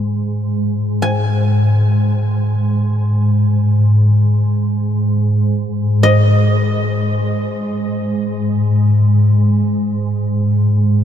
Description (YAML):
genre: world meditative, free-time meditation music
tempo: free time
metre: none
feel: none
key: unclear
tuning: A4 = 441 Hz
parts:
  - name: glassy FM pad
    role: drone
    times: 0.0-11.0 s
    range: G#2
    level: -13 LUFS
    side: equal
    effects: ensemble chorus, built-in reverb
  - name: guzheng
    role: texture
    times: 1.0-11.0 s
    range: D#5 to G#5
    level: -22 LUFS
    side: left 1 dB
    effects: shimmer reverb
room: moderate huge ambient reverb, RT60 7.2 s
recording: dark, warm production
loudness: -13 LUFS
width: side -9 dB against mid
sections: 0.0-11.0 A section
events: none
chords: none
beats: free time